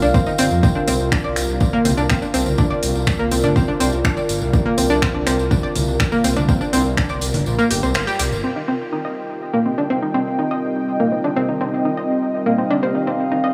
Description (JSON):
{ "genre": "melodic techno", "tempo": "123 BPM", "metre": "4/4", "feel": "straight", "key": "C minor", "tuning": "A4 = 440 Hz", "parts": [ { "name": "analog pluck", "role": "arpeggios", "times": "0.0-13.5 s", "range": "Bb3 to Eb5", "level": "-23 LUFS", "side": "equal", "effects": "chorus, sidechain pumping, dub echo" }, { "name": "swelling detuned saw bass", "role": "bass", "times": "0.0-8.4 s", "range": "G1 to F2", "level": "-25 LUFS", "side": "equal", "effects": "sidechain pumping" }, { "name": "tambourine", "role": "percussion", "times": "0.0-8.4 s", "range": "none", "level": "-34 LUFS", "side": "equal", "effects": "none" }, { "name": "warbly tape-like pad", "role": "texture", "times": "0.0-13.5 s", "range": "C4 to F5", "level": "-27 LUFS", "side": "equal", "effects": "chorus, built-in reverb, sidechain pumping" }, { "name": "electronic kick drum", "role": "drums", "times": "0.1-7.1 s", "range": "none", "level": "-23 LUFS", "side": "equal", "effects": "overdrive, small room ambience" }, { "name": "deep house drum kit", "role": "drums", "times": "0.4-8.3 s", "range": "congas, finger snaps, hi-hat", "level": "-28 LUFS", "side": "equal", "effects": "overdrive, sidechain pumping on hats, small room ambience, sidechain pumping on perc" }, { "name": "warm analog pad", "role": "sustained chords", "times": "8.4-13.5 s", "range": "C4 to G5", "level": "-27 LUFS", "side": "equal", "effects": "chorus, sidechain pumping" }, { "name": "overtone-sweeping drone", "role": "drone", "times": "9.2-13.5 s", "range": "C3 to G3", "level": "-31 LUFS", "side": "equal", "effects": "chorus, built-in reverb, phaser, sidechain pumping" } ], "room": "moderate huge ambient reverb, RT60 4.9 s", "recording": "none", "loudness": "-19 LUFS", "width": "mono", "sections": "0.0-8.4 A section; 8.4-13.5 B section", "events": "kick drops out 7.5-8.4; band accent 8.0", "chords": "0.0 Cm; 0.6 Gm; 8.4 Cm", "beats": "0.14 | 0.63 1.12 1.61 2.10 | 2.58 3.07 3.56 4.05 | 4.54 5.02 5.51 6.00 | 6.49 6.97 7.46 7.95 | 8.44 8.93 9.41 9.90 | 10.39 10.88 11.37 11.85 | 12.34 12.83 13.32" }